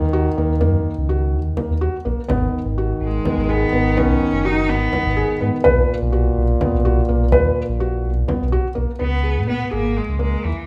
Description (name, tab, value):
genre	contemporary instrumental, chamber music in an uneven meter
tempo	250 BPM (eighths)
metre	7/8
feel	straight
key	unclear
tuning	A4 = 443 Hz
part	dark French horn	second line	0.0-8.7 s	A#2 to D#3	-26 LUFS	equal	none
part	felt-muted upright piano	arpeggios	0.0-10.5 s	A#3 to B4	-24 LUFS	equal	none
part	sub bass with octave	bass	0.0-10.5 s	F#1 to A#2	-23 LUFS	equal	none
part	frame drum	percussion	0.1-8.9 s	none	-29 LUFS	equal	none
part	clear cello	melody	3.0-5.4, 9.0-10.7 s	E3 to D#4	-26 LUFS	equal	none
room	wet recital hall reverb, RT60 1.5 s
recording	recorded in a church or concert hall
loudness	-19 LUFS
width	mono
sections	0.0-9.0 A section; 9.0-10.7 B section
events	none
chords	0.0 D#m; 2.3 G#m7; 5.7 Bmaj7(no3); 9.0 C#5